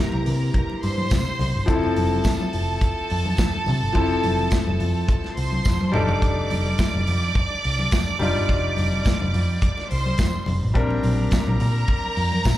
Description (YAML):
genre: disco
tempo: 106 BPM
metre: 4/4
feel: straight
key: F major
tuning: A4 = 440 Hz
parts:
  - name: clear studio violin section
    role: second line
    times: 0.0-12.6 s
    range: A4 to D6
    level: -28 LUFS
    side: right 2 dB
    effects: none
  - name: clear grand piano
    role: accompaniment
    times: 0.0-12.6 s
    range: E3 to Bb4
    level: -27 LUFS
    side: left 2 dB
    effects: slapback echo
  - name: hollow-body short-scale picked electric bass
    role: bass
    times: 0.1-12.6 s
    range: F1 to C3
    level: -23 LUFS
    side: equal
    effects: none
  - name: congas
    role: percussion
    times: 0.1-12.6 s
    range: none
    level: -32 LUFS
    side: left 2 dB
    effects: slapback echo
  - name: modern studio drum kit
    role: drums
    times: 0.3-12.6 s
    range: hi-hat, kick drum, snare drum, toms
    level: -24 LUFS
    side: equal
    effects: none
  - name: tambourine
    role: percussion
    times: 1.1-12.6 s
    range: none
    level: -38 LUFS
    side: right 3 dB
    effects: none
room: small room ambience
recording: live gig heard through the venue's PA, club reverb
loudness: -19 LUFS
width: side -14 dB against mid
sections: 0.0-12.6 A section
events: drum fill 5.7-6.2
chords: 0.0 C7; 1.7 Fmaj7; 5.9 F13; 10.8 Bb69